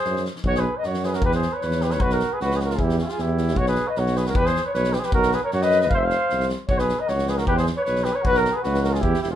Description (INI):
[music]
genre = balkan folk, Balkan brass band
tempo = 154 BPM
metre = 2/4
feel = straight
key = unclear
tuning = A4 = 440 Hz
[part]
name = mellow flugelhorn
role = melody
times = 0.0-9.4 s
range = F4 to F5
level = -24 LUFS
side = left 1 dB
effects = none
[part]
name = mellow trumpet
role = second line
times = 0.0-9.4 s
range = Db4 to C#5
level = -28 LUFS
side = right 2 dB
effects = none
[part]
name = loose indie drum kit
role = percussion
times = 0.0-9.3 s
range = kick drum, snare drum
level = -28 LUFS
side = left 1 dB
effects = none
[part]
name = mellow tuba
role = bass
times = 0.1-9.4 s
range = E1 to F#2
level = -24 LUFS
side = equal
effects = none
[sound]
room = moderate small room reverb, RT60 0.5 s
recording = minimal, uncompressed stereo recording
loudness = -19 LUFS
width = side -11 dB against mid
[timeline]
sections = 0.4-6.7 A section; 6.7-9.4 A section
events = none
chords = 0.1 Ab7/Gb; 0.4 B5; 1.2 Em6; 2.0 Abm11/Cb (rootless); 2.8 Em; 3.6 Bsus2; 4.4 E5; 5.1 B5; 5.9 F5; 6.7 Bsus2; 7.5 E5; 8.3 Abm11/Cb